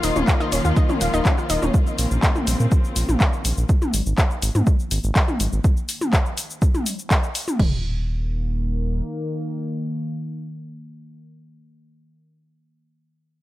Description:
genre	melodic techno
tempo	123 BPM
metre	4/4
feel	straight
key	unclear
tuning	A4 = 439 Hz
part	warm studio string section	sustained chords	0.0-3.7 s	Db3 to F4	-27 LUFS	left 2 dB	sidechain pumping
part	analog pluck	arpeggios	0.0-1.7 s	Db4 to F5	-25 LUFS	left 1 dB	chorus, sidechain pumping, digital delay
part	round analog bass	bass	0.0-9.0 s	Eb1 to Bb2	-22 LUFS	equal	sidechain pumping
part	analog drone	drone	0.0-11.2 s	Eb3 to Bb3	-33 LUFS	equal	chorus, sidechain pumping
part	deep house drum kit	drums	0.0-7.6 s	handclaps, hi-hat, shaker, toms	-24 LUFS	left 1 dB	sidechain pumping on perc, sidechain pumping on hats, sidechain pumping on toms
part	deep house drum kit	drums	0.3-7.7 s	crash cymbal, kick drum, toms	-18 LUFS	equal	none
room	digital ambience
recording	none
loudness	-19 LUFS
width	side -16 dB against mid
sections	0.0-7.6 A section; 7.6-11.5 B section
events	drop 0.0-7.6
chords	0.0 Ebsus2; 1.7 Bbmadd9; 3.7 Ab5; 5.6 N.C.; 7.6 Eb5

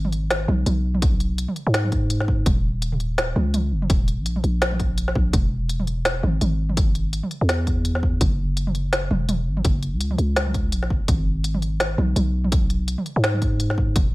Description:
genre	half-time drum and bass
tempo	167 BPM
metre	4/4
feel	swing 57% on 16ths, half-time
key	G# minor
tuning	A4 = 440 Hz
part	growling 808-style bass	bass	0.0-14.1 s	D#1 to G#2	-22 LUFS	equal	none
part	organic electronic drum kit	drums	0.0-14.0 s	hi-hat, snare drum, toms	-25 LUFS	equal	studio reverb
part	electronic kick drum	drums	1.0-14.0 s	none	-22 LUFS	equal	studio reverb
room	little or no reverb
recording	none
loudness	-19 LUFS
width	side -20 dB against mid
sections	0.0-14.1 A section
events	none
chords	none

